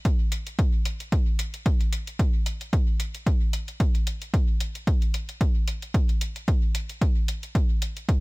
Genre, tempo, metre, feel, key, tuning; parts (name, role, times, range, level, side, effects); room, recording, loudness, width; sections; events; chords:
techno; 112 BPM; 4/4; swing 55% on 16ths
electronic hi-hat; drums; 0.1-8.2 s; -36 LUFS; left 1 dB; dub echo
electronic kick drum; drums; 0.1-8.2 s; -22 LUFS; equal; overdrive
little or no reverb; -23 LUFS; side -25 dB against mid
0.0-8.2 A section